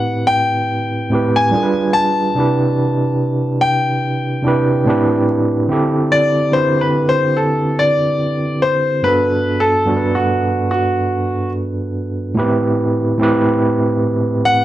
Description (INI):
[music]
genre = R&B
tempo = 72 BPM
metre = 4/4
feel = swing 61% on 16ths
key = unclear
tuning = A4 = 436 Hz
[part]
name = clear concert grand piano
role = melody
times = 0.0-14.6 s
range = F#4 to A5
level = -17 LUFS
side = left 1 dB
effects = slapback echo
[part]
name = overdriven tine electric piano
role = accompaniment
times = 0.0-14.6 s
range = G2 to B4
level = -16 LUFS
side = right 1 dB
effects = fast tremolo
[sound]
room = moderate studio reverb, RT60 0.9 s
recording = none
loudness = -14 LUFS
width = side -14 dB against mid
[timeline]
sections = 0.0-5.7 A section; 5.7-14.6 B section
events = grand piano solo 5.7-14.6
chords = 0.0 Am7; 1.5 G7b9; 2.4 Cmaj7; 4.9 Am11; 5.7 D9sus4; 9.0 Gmaj9; 12.4 Am7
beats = 0.69 1.52 | 2.35 3.19 4.02 4.86 | 5.69 6.52 7.36 8.19 | 9.02 9.86 10.69 11.52 | 12.36 13.19 14.02